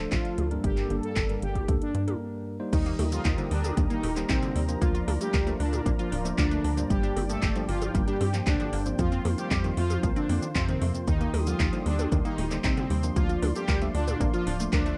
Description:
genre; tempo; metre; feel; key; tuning
italo disco; 115 BPM; 4/4; straight; unclear; A4 = 442 Hz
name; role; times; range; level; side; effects
analog synth brass; melody; 0.0-15.0 s; C3 to A4; -34 LUFS; equal; chorus
warm analog pad; sustained chords; 0.0-15.0 s; F3 to Eb6; -41 LUFS; equal; chorus
tine electric piano; stabs; 0.0-15.0 s; G2 to C5; -37 LUFS; equal; vintage 12-bit sampler grit
tight sequencer bass; bass; 0.0-14.9 s; D1 to G2; -31 LUFS; equal; none
electronic kick drum; drums; 0.1-14.8 s; none; -31 LUFS; equal; studio reverb
house drum kit; drums; 0.1-15.0 s; cabasa, crash cymbal, handclaps, hi-hat, toms; -38 LUFS; equal; studio reverb
analog pluck; arpeggios; 2.7-15.0 s; Eb2 to Bb4; -38 LUFS; equal; chorus, cassette tape
room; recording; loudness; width
little or no reverb; dry, close 1970s-style studio recording; -27 LUFS; mono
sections
0.0-2.7 A section; 2.7-15.0 B section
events
break 2.2-2.7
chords
0.0 Dm; 0.6 Gmadd9; 2.7 Eb; 4.8 Bb/D; 6.9 Gm; 9.0 Fsus4; 11.1 Eb; 13.2 Bb/D

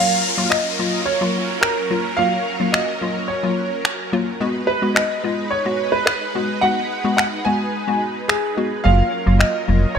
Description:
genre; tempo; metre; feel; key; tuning
dance-pop; 108 BPM; 4/4; straight; F# major; A4 = 440 Hz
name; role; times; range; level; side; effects
warm concert grand piano; melody; 0.0-10.0 s; G#4 to G#5; -21 LUFS; right 2 dB; analog chorus, ping-pong delay
hollow square pluck; accompaniment; 0.0-9.9 s; F#3 to F#4; -23 LUFS; left 3 dB; chorus
supersaw chords; sustained chords; 0.0-10.0 s; F#3 to B4; -27 LUFS; right 2 dB; ensemble chorus
downlifter; sound effects; 0.0-4.4 s; none; -26 LUFS; left 2 dB; none
electronic finger snaps; drums; 0.5-9.5 s; none; -22 LUFS; left 1 dB; overdrive
sub bass with octave; bass; 8.9-10.0 s; E#1 to F#1; -14 LUFS; right 1 dB; none
room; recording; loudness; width
light reverb; bright 1980s-style digital production; -17 LUFS; side -7 dB against mid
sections
0.0-10.0 A section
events
none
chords
0.0 F#maj7; 4.4 G#m7; 8.9 F#maj7

